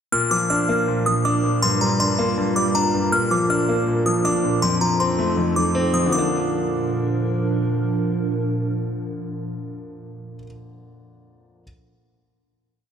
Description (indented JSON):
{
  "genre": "hip hop, trap",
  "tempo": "160 BPM",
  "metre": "4/4",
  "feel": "half-time",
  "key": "Bb major",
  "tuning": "A4 = 439 Hz",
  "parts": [
    { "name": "delicate synth tine bell", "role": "melody", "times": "0.1-7.2 s", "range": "Bb5 to F6", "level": "-22 LUFS", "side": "left 1 dB", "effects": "chorus, phaser, diffuse ambient delay" },
    { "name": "warm concert grand piano", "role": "accompaniment", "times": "0.1-11.6 s", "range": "F2 to D4", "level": "-22 LUFS", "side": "left 1 dB", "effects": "none" },
    { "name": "warbly tape-like pad", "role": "sustained chords", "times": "0.5-9.9 s", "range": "F2 to Bb4", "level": "-24 LUFS", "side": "right 2 dB", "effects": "chorus, built-in reverb" }
  ],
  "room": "wet plate reverb, RT60 3.1 s",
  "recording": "dreamy mix soaked in reverb",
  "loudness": "-18 LUFS",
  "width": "side -8 dB against mid",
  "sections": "0.1-6.1 breakdown; 6.1-9.1 final chord",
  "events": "none",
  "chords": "0.1 Bb; 1.6 Gm7; 3.1 Bb; 4.6 F7; 6.1 Bb",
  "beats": "| 0.12 0.50 0.87 1.25 | 1.62 2.00 2.37 2.75 | 3.12 3.50 3.87 4.25 | 4.62 5.00 5.37 5.75 | 6.12 6.50 6.87 7.25 | 7.62 8.00 8.37 8.75"
}